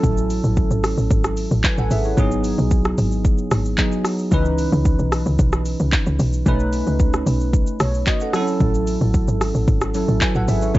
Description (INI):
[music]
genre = amapiano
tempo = 112 BPM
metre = 4/4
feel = straight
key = unclear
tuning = A4 = 440 Hz
[part]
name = bell-like tine electric piano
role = accompaniment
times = 0.0-10.8 s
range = E3 to G#5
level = -22 LUFS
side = right 1 dB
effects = analog chorus
[part]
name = woody log drum bass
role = bass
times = 0.0-10.8 s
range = G#1 to C#2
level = -20 LUFS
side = equal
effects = none
[part]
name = deep house drum kit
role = drums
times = 0.0-10.8 s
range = handclaps, hi-hat, kick drum, rim click, shaker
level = -20 LUFS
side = equal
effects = none
[sound]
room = little or no reverb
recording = dry, gritty hardware recording, cassette tape, nothing above 7.7 kHz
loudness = -16 LUFS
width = side -17 dB against mid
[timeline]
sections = 0.0-10.8 A section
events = none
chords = 0.0 A6; 2.2 G#m7; 4.3 C#m9; 6.5 B9; 8.3 A6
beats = | 0.03 0.57 1.10 1.64 | 2.18 2.71 3.25 3.78 | 4.32 4.86 5.39 5.93 | 6.46 7.00 7.53 8.07 | 8.61 9.14 9.68 10.21 | 10.75